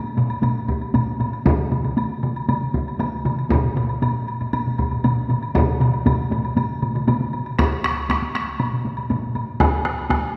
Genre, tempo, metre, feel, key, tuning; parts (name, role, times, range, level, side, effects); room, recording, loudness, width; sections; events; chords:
japanese traditional, taiko drum ensemble; 118 BPM; 4/4; straight
taiko ensemble; percussion; 0.0-10.2 s; -28 LUFS; equal
taiko ensemble; percussion; 0.2-9.5 s; -26 LUFS; equal
woodblock; percussion; 0.2-10.2 s; -32 LUFS; equal
solo taiko drums; percussion; 0.7-10.2 s; -26 LUFS; equal
taiko ensemble; percussion; 1.5-10.2 s; -27 LUFS; equal
wet scoring stage reverb, RT60 1.9 s; -22 LUFS; mono
0.0-7.6 A section; 7.6-10.4 B section